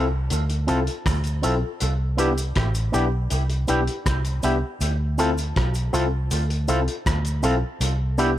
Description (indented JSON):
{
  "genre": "lovers rock reggae",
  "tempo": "80 BPM",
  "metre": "4/4",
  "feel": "straight",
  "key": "D dorian",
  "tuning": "A4 = 439 Hz",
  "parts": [
    { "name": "barky tine electric piano", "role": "accompaniment", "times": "0.0-8.3 s", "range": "B3 to A4", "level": "-28 LUFS", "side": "left 4 dB", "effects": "overdrive" },
    { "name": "electric guitar with an envelope filter", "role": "stabs", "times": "0.0-8.3 s", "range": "B3 to A4", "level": "-28 LUFS", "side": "right 3 dB", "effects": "dub echo" },
    { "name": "vintage muted fingered electric bass", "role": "bass", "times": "0.0-8.4 s", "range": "A1 to D2", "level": "-23 LUFS", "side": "equal", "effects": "none" },
    { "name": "cloth-damped thuddy drum kit", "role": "drums", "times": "0.3-8.4 s", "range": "hi-hat, kick drum, rim click", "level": "-28 LUFS", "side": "equal", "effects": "none" },
    { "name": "cabasa", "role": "percussion", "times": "0.3-8.4 s", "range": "none", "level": "-37 LUFS", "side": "right 4 dB", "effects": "none" }
  ],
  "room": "small room ambience",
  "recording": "none",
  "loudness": "-20 LUFS",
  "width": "side -12 dB against mid",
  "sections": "0.0-8.4 A section",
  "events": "none",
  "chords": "0.0 Dm7; 1.8 Cmaj7; 4.8 Dm7; 7.8 Cmaj7",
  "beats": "0.31 1.06 | 1.81 2.56 3.31 4.06 | 4.81 5.56 6.31 7.06 | 7.81"
}